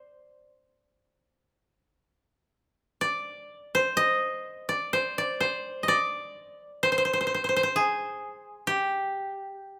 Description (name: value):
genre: japanese traditional, Japanese chamber music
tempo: 58-67 BPM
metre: 4/4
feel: rubato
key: C hirajoshi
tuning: A4 = 440 Hz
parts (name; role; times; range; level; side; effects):
- koto; solo; 0.0-9.8 s; G4 to Eb5; -28 LUFS; equal; none
room: light reverb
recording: close, detailed microphones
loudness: -27 LUFS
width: mono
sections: 0.0-3.0 A section; 3.0-9.8 B section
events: none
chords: none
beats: 0.06 1.02 2.03 | 3.02 4.00 4.96 5.91 | 6.85 7.76 8.66 9.57